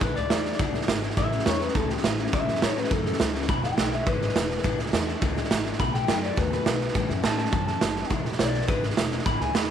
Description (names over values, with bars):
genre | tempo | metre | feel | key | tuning
rockabilly | 208 BPM | 4/4 | straight | E mixolydian | A4 = 439 Hz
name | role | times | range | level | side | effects
electric guitar through a small old amp | melody | 0.0-9.7 s | G4 to B5 | -30 LUFS | left 3 dB | tape echo
picked steel-string acoustic guitar | accompaniment | 0.0-9.7 s | E2 to F#4 | -32 LUFS | left 14 dB | none
upright bass | bass | 0.0-9.7 s | E1 to A2 | -32 LUFS | left 1 dB | none
raw garage drum kit | drums | 0.0-9.6 s | hi-hat, kick drum, snare drum | -25 LUFS | right 3 dB | none
room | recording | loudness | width
light reverb, small room reverb | 1960s-style stereo | -23 LUFS | side -9 dB against mid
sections
0.0-9.7 A section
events
none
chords
0.0 E7; 1.2 A7; 3.5 E7; 5.8 B7; 7.0 A7; 8.1 E7